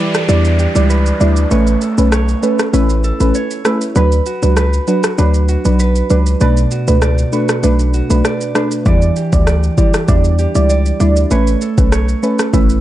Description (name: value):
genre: dancehall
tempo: 98 BPM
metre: 4/4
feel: straight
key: E dorian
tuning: A4 = 442 Hz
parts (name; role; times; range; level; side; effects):
- deep mellow chord stab; accompaniment; 0.0-12.8 s; F#3 to D5; -16 LUFS; right 1 dB; chorus
- mellow electric guitar; arpeggios; 0.0-12.8 s; B2 to D5; -20 LUFS; right 2 dB; none
- downlifter; sound effects; 0.0-4.0 s; none; -27 LUFS; equal; none
- deep house drum kit; drums; 0.1-12.8 s; kick drum, rim click, shaker; -17 LUFS; equal; overdrive
- hard-hitting 808-style bass; bass; 0.3-12.8 s; A1 to E2; -13 LUFS; equal; none
room: digital ambience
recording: dark, warm production, nothing above 10.9 kHz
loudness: -11 LUFS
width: side -13 dB against mid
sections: 0.0-12.8 A section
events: break 0.0-8.9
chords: 0.0 Em7; 1.5 Aadd9; 4.0 D6; 8.9 Em7; 11.3 Aadd9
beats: 0.29 0.90 | 1.51 2.12 2.74 3.35 | 3.96 4.57 5.19 5.80 | 6.41 7.02 7.64 8.25 | 8.86 9.47 10.09 10.70 | 11.31 11.92 12.53